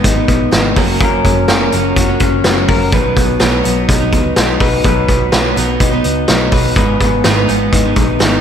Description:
jangly indie pop; 125 BPM; 4/4; straight; B major; A4 = 439 Hz
picked steel-string acoustic guitar; accompaniment; 0.0-8.4 s; F#2 to D#4; -17 LUFS; right 6 dB; slapback echo
electric guitar through a small old amp; arpeggios; 0.0-8.4 s; G#2 to B4; -16 LUFS; left 4 dB; slapback echo
vintage muted picked electric bass; bass; 0.0-8.4 s; F#1 to C#2; -19 LUFS; equal
vintage drum kit; drums; 0.0-8.3 s; hi-hat, kick drum, snare drum; -14 LUFS; equal
moderate lush hall reverb, RT60 1.6 s, small room ambience; big arena sound; -10 LUFS; side -8 dB against mid
0.0-8.4 A section
0.0 G#m; 0.8 F#; 2.9 B; 6.8 G#m
0.04 0.52 | 1.00 1.48 1.96 2.44 | 2.92 3.40 3.88 4.36 | 4.84 5.32 5.80 6.28 | 6.76 7.24 7.72 8.20

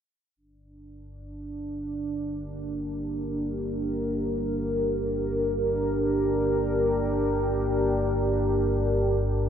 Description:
dark ambient drone; free time; G minor; A4 = 440 Hz
deep dark ambient pad; sustained chords; 1.3-9.5 s; D4 to Bb4; -26 LUFS; equal; chorus, built-in reverb
deep rumbling drone; drone; 0.8-9.5 s; G1 to G2; -32 LUFS; equal; built-in reverb, wide subtle chorus
wet huge ambient reverb, RT60 8.2 s; -24 LUFS; side -8 dB against mid
0.4-9.5 A section
fade-in on synth drone 0.4-9.5
0.4 Gm
free time

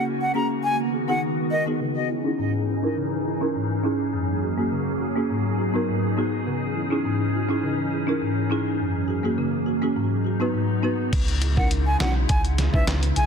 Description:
dancehall; 103 BPM; 4/4; straight; A4 = 440 Hz
silver concert flute; melody; 0.0-1.6, 11.6-13.3 s; D#5 to A#5; -27 LUFS; left 1 dB; ping-pong delay
folk marimba with medium mallets; accompaniment; 0.0-13.2 s; F#2 to B4; -25 LUFS; left 1 dB; low-pass filter
glassy FM pad; sustained chords; 0.0-13.3 s; C#3 to G#4; -26 LUFS; right 1 dB; ensemble chorus, built-in reverb, sidechain pumping, low-pass filter
punchy sub bass; bass; 11.1-13.3 s; B1 to C#2; -22 LUFS; equal
trip hop sampler-style drum kit; drums; 11.1-13.3 s; crash cymbal, handclaps, hi-hat, kick drum, rim click, snare drum; -23 LUFS; equal
light reverb, small room ambience; dense, heavily limited modern master; -21 LUFS; side -6 dB against mid
0.0-1.8 A section; 1.8-11.1 B section; 11.1-13.3 A section
break 0.0-1.8; filter sweep 1.8-11.1
0.0 F#add9; 0.6 G#m7; 1.8 C#madd9; 4.1 F#add9; 5.3 G#m7; 6.5 C#madd9; 8.8 F#add9; 10.0 G#m7; 11.1 C#madd9
0.06 0.64 1.23 | 1.81 2.39 2.97 3.56 | 4.14 4.72 5.30 5.88 | 6.47 7.05 7.63 8.21 | 8.80 9.38 9.96 10.54 | 11.13 11.71 12.29 12.88

